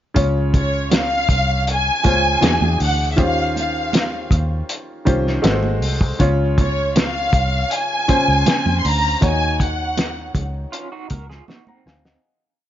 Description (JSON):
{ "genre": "lush 1970s-style soul", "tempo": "80 BPM", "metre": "4/4", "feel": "straight", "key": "Db major", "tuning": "A4 = 441 Hz", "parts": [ { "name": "clear concert grand piano", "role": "accompaniment", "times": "0.1-12.4 s", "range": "Db3 to Bb5", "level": "-24 LUFS", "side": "left 1 dB", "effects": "none" }, { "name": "vintage muted fingered electric bass", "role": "bass", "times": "0.2-12.2 s", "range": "Ab1 to F2", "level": "-21 LUFS", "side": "equal", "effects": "none" }, { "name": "cloth-damped thuddy drum kit", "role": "drums", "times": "0.2-12.2 s", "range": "hi-hat, kick drum, snare drum", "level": "-19 LUFS", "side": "equal", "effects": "none" }, { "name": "congas", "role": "percussion", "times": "0.2-11.8 s", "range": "none", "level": "-28 LUFS", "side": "right 6 dB", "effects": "none" }, { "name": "warm studio violin section", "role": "melody", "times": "0.6-10.4 s", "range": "Db5 to C6", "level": "-20 LUFS", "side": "equal", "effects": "none" }, { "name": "electric guitar through a small old amp", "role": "riff", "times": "10.7-12.2 s", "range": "C4 to Bb4", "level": "-36 LUFS", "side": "right 5 dB", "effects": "tremolo" } ], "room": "light reverb, studio reverb", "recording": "nothing above 7.5 kHz", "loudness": "-16 LUFS", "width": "side -11 dB against mid", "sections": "0.2-12.2 verse", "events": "fade-out 9.2-12.2; drum fill 11.5-12.2", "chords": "0.2 Dbmaj7; 2.4 E9; 3.2 Eb13; 5.4 Ab7b9; 6.2 Dbmaj7; 9.2 Ebm7" }